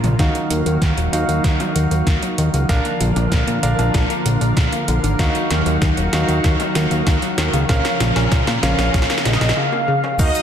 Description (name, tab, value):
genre	synthwave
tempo	96 BPM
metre	4/4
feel	straight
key	Eb minor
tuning	A4 = 440 Hz
part	lush unison pad	sustained chords	0.0-10.4 s	Db3 to F5	-23 LUFS	equal	chorus, sidechain pumping, shimmer reverb
part	fat analog bass	bass	0.0-10.3 s	Eb1 to Bb2	-19 LUFS	equal	tube saturation
part	80s electronic pad drums	drums	0.0-10.4 s	crash cymbal, hi-hat, shaker, snare drum, toms	-23 LUFS	equal	gated reverb on snare and toms, overdrive, high-pass filter on hats, high-pass filter on snare, high-pass filter on toms, high-pass filter on cymbals, high-pass filter on perc, high-pass filter on room
part	analog pluck	arpeggios	0.2-10.2 s	Db3 to D4	-26 LUFS	left 2 dB	chorus, ping-pong delay, shimmer reverb
part	warm electric grand piano	stabs	0.2-10.4 s	Db4 to F5	-24 LUFS	right 1 dB	low-pass filter, ping-pong delay, shimmer reverb
part	electronic kick drum	drums	0.2-10.3 s	none	-19 LUFS	equal	overdrive
part	mellow synth brass	melody	9.3-10.4 s	Eb5 to F5	-20 LUFS	right 1 dB	chorus, cassette tape, digital delay, shimmer reverb
part	string machine, violins	second line	10.2-10.4 s	Eb5	-23 LUFS	equal	ensemble chorus, cassette tape
room	moderate digital room reverb, RT60 1.2 s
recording	dense, heavily limited modern master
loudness	-15 LUFS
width	side -8 dB against mid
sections	0.2-10.2 A section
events	drum fill 0.0, 0.2-9.6, 9.6-10.2; filter sweep on electric grand piano 0.2-10.2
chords	0.2 Ebmadd9; 2.7 Bb; 5.2 Ebmadd9; 7.7 Bbm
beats	| 0.19 0.82 1.44 2.07 | 2.69 3.32 3.94 4.57 | 5.19 5.82 6.44 7.07 | 7.69 8.32 8.94 9.57 | 10.19